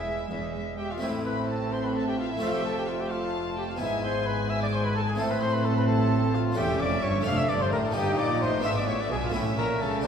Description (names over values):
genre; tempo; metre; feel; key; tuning
classical, baroque-style concerto movement with solo episodes; 86 BPM (dotted quarters); 6/8; straight; A minor; A4 = 441 Hz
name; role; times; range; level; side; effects
rich chamber violin section; melody; 0.0-10.1 s; C5 to A5; -37 LUFS; left 4 dB; none
warm trumpet; melody; 0.0-10.1 s; E4 to F5; -31 LUFS; left 2 dB; none
rich chamber violin section; second line; 0.0-10.0 s; E5 to F6; -35 LUFS; equal; none
dark chamber viola section; accompaniment; 0.0-10.1 s; G#3 to Eb4; -33 LUFS; right 2 dB; none
harpsichord; accompaniment; 0.0-10.1 s; E2 to A4; -32 LUFS; equal; none
rich chamber cello section; bass; 0.0-10.1 s; E2 to C#3; -32 LUFS; equal; none
rich chamber double bass section; bass; 0.0-10.1 s; E1 to C#2; -32 LUFS; right 2 dB; none
room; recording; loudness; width
wet scoring stage reverb, RT60 1.6 s; heard from further back in the room; -24 LUFS; side -7 dB against mid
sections
0.0-1.0 A section; 1.0-10.1 A section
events
none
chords
0.0 E; 1.0 Am; 2.4 F; 3.8 E/G#; 5.2 Am; 6.6 A7/E; 7.3 Dm/F; 8.0 Eb/G; 8.6 G#dim7; 9.3 A